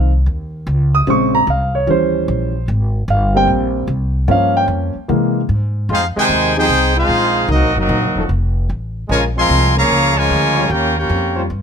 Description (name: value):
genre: jazz, big band swing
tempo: 150 BPM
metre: 4/4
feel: swing 67% on 8ths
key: F minor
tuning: A4 = 440 Hz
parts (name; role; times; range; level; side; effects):
- warm concert grand piano; accompaniment; 0.0-5.4 s; Db3 to Eb6; -15 LUFS; equal; none
- upright bass; bass; 0.0-11.6 s; Eb1 to C3; -17 LUFS; equal; none
- brilliant trumpet section; melody; 5.9-11.5 s; C4 to C6; -15 LUFS; equal; none
- clear trombone section; second line; 5.9-11.5 s; C3 to Ab4; -19 LUFS; right 1 dB; none
- clear trombone section; sustained chords; 6.6-11.4 s; F3 to Db5; -25 LUFS; left 2 dB; none
room: light reverb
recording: close, detailed microphones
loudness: -13 LUFS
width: side -7 dB against mid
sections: 0.0-5.9 A section; 5.9-11.6 B section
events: grand piano solo 0.0-5.9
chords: 0.0 Dbmaj9; 1.1 Bbm9; 1.9 Eb7b9; 2.7 Abmaj9; 4.3 Gm7b5; 5.1 C7b13; 5.9 Fm9; 7.5 Cm7b5; 8.3 F; 9.1 Bbm7; 10.7 Eb9